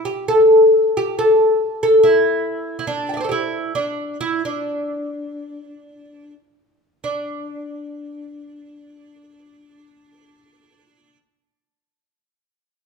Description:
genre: japanese traditional.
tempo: 42-72 BPM.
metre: 2/4.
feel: rubato.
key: unclear.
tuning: A4 = 440 Hz.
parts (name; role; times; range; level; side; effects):
oud; melody; 0.0-11.2 s; D4 to G5; -16 LUFS; equal; none.
room: light reverb.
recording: minimal, uncompressed stereo recording.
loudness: -15 LUFS.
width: side -4 dB against mid.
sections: 0.0-7.0 A section; 7.0-12.4 B section.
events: slowing down 2.9-7.0.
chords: none.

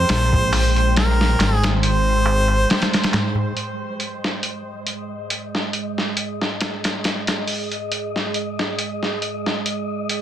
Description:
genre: trip hop.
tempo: 69 BPM.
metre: 4/4.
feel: swing 54% on 16ths.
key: unclear.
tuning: A4 = 439 Hz.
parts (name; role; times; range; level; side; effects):
clear harmonica; melody; 0.0-3.1 s; Bb4 to C5; -23 LUFS; equal; tape echo.
deep dark ambient pad; sustained chords; 0.0-10.2 s; Ab3 to G5; -28 LUFS; right 6 dB; chorus, built-in reverb.
dark detuned saw bass; bass; 0.0-3.5 s; Ab1 to Ab2; -19 LUFS; equal; none.
wind-like tuned noise texture; texture; 0.0-10.2 s; C5 to Eb5; -32 LUFS; left 2 dB; built-in reverb.
boom bap sampler-style drum kit; drums; 0.1-10.2 s; hi-hat, kick drum, snare drum; -22 LUFS; equal; high-pass filter on hats, vintage 12-bit sampler grit, high-pass filter on kick, high-pass filter on snare, high-pass filter on room.
darbuka; percussion; 0.1-3.5 s; none; -28 LUFS; right 1 dB; none.
room: little or no reverb.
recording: dense, heavily limited modern master.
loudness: -18 LUFS.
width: side -11 dB against mid.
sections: 0.0-3.6 A section; 3.6-10.2 B section.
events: filter sweep on ambient pad 3.6-10.2.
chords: 0.1 Abmaj9; 1.8 Abmaj7; 3.6 Ab5.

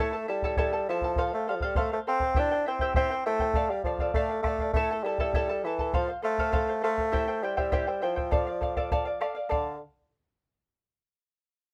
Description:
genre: andean folk, Andean ensemble.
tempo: 101 BPM.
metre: 2/4.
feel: straight.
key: D minor.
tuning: A4 = 441 Hz.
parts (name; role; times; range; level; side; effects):
clear bassoon; melody; 0.0-9.8 s; D3 to D4; -31 LUFS; equal; none.
charango; accompaniment; 0.0-9.7 s; E4 to A5; -33 LUFS; equal; none.
bombo; percussion; 0.4-9.8 s; none; -33 LUFS; equal; none.
room: light reverb.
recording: none.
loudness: -28 LUFS.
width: mono.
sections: 0.0-9.5 A section; 9.5-10.7 B section.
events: none.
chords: 0.0 A; 1.2 F; 2.4 C; 3.6 Dm; 4.7 A; 5.9 F; 7.1 C; 8.3 Dm.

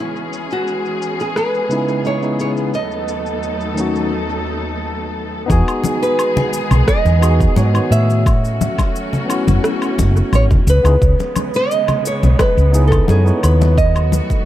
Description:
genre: sunset chillout.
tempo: 87 BPM.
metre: 4/4.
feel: straight.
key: E major.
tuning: A4 = 442 Hz.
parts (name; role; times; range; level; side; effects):
nylon-string guitar; melody; 0.0-14.4 s; E4 to E5; -20 LUFS; right 1 dB; analog delay.
muted studio string section; sustained chords; 0.0-14.5 s; D#2 to A4; -24 LUFS; equal; none.
electronic shaker, rim click and woodblock; drums; 0.2-14.4 s; none; -24 LUFS; left 1 dB; overdrive, low-pass filter on cymbals, studio reverb, low-pass filter on perc, low-pass filter on snare, analog delay.
tine electric piano; accompaniment; 1.7-13.8 s; C#3 to C#5; -22 LUFS; moving between left 4 dB and right 3 dB; auto-pan, low-pass filter, analog delay.
woody fretless electric bass; bass; 5.5-14.2 s; E1 to A2; -13 LUFS; equal; none.
electronic kick drum; drums; 5.5-14.4 s; none; -16 LUFS; equal; overdrive, studio reverb.
congas; percussion; 5.8-14.4 s; none; -23 LUFS; left 3 dB; analog delay.
room: light reverb, small room ambience.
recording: echo-heavy mix.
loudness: -13 LUFS.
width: side -13 dB against mid.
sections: 0.0-5.5 A section; 5.5-14.5 B section.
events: filter sweep on tine electric piano 0.0-5.5; break 4.1-5.5.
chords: 0.0 C#m7; 2.7 B7/D#; 5.5 Emaj7; 8.3 A6; 10.7 C#m7; 13.8 B7.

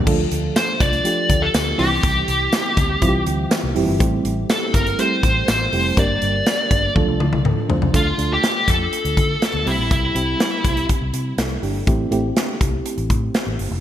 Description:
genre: 1980s-style pop.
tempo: 122 BPM.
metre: 4/4.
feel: straight.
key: D minor.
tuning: A4 = 438 Hz.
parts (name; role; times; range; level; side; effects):
FM electric piano with tremolo; accompaniment; 0.0-13.8 s; E3 to G5; -24 LUFS; right 2 dB; none.
vintage muted fingered electric bass; bass; 0.0-13.8 s; F1 to D3; -24 LUFS; equal; none.
modern studio drum kit; drums; 0.1-13.7 s; crash cymbal, hi-hat, kick drum, snare drum, tambourine, toms; -20 LUFS; equal; gated reverb.
smooth overdriven lead guitar; melody; 0.6-10.9 s; E4 to D5; -21 LUFS; left 1 dB; digital delay.
room: moderate lush hall reverb, RT60 1.8 s.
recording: bright 1980s-style digital production.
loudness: -16 LUFS.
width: side -11 dB against mid.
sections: 0.0-7.9 A section; 7.9-13.8 B section.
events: FM electric piano fill 3.0-4.0; drum fill 7.0-7.9.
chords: 0.1 Dm; 1.8 C; 4.0 Am7; 6.0 Gm; 7.0 Dm; 9.7 C; 11.9 Am7.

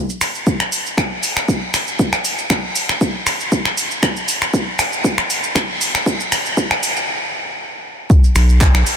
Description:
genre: afro house.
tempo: 118 BPM.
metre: 4/4.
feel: swing 53% on 16ths.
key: unclear.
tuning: A4 = 440 Hz.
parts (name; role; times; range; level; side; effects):
deep house drum kit; drums; 0.1-9.0 s; finger snaps, handclaps, hi-hat, shaker; -17 LUFS; equal; none.
electronic kick drum; drums; 0.5-8.7 s; none; -15 LUFS; equal; high-pass filter on kick, high-pass filter on room.
round analog bass; bass; 8.4-8.8 s; B1; -12 LUFS; equal; sidechain pumping.
room: moderate huge ambient reverb, RT60 4.6 s.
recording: dreamy mix soaked in reverb.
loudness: -15 LUFS.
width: side -8 dB against mid.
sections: 0.0-8.1 A section.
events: build-up 0.0-8.1; stop 7.1-8.1.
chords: none.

